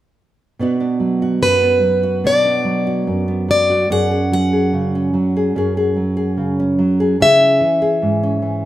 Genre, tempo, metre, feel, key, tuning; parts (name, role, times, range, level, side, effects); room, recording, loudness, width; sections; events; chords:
folk; 73 BPM; 4/4; straight; B dorian; A4 = 443 Hz
nylon-string guitar; accompaniment; 0.6-8.7 s; F#2 to G#4; -17 LUFS; right 1 dB
picked plugged-in steel-string acoustic guitar; melody; 1.4-8.7 s; B4 to F#5; -15 LUFS; left 1 dB
moderate large studio reverb, RT60 1.3 s; minimal, uncompressed stereo recording; -14 LUFS; side -14 dB against mid
0.6-8.7 A section
0.6 Bm; 3.9 F#sus2; 7.2 C#m